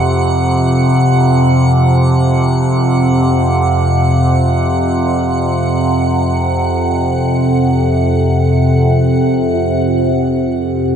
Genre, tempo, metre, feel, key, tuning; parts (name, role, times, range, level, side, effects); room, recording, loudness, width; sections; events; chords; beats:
dark ambient drone; free time; A4 = 440 Hz
overtone-sweeping drone; drone; 0.0-11.0 s; F2 to C3; -11 LUFS; equal; chorus, built-in reverb
icy glass pad; texture; 0.0-9.6 s; Gb5; -21 LUFS; right 2 dB; chorus, built-in reverb
wet cathedral reverb, RT60 5.1 s; dark, warm production; -11 LUFS; side -8 dB against mid
0.0-9.6 A section; 9.6-11.0 B section
0.0 F5
free time